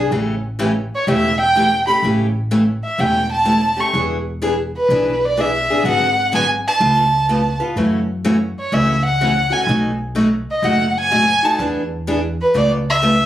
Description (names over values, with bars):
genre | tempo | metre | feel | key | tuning
acoustic string swing (jazz manouche) | 126 BPM | 4/4 | swing 66% on 8ths | E mixolydian | A4 = 440 Hz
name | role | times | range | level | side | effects
picked steel-string acoustic guitar | accompaniment | 0.0-13.1 s | B2 to B4 | -18 LUFS | equal | none
upright bass | bass | 0.0-13.3 s | E1 to F#2 | -23 LUFS | equal | none
warm violin | melody | 1.0-13.3 s | B4 to C#6 | -16 LUFS | right 1 dB | none
room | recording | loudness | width
light reverb | recorded on a phone in the room, studio reverb, compression | -15 LUFS | side -12 dB against mid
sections
0.0-13.3 A section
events
none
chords
0.1 A7; 3.9 E7; 5.8 G#m7b5; 6.8 C#aug7; 7.8 F#m7; 9.7 B7; 11.6 E7; 12.5 C#7alt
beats
| 0.11 0.59 1.07 1.55 | 2.02 2.50 2.98 3.46 | 3.94 4.41 4.89 5.37 | 5.85 6.33 6.80 7.28 | 7.76 8.24 8.72 9.19 | 9.67 10.15 10.63 11.11 | 11.59 12.06 12.54 13.02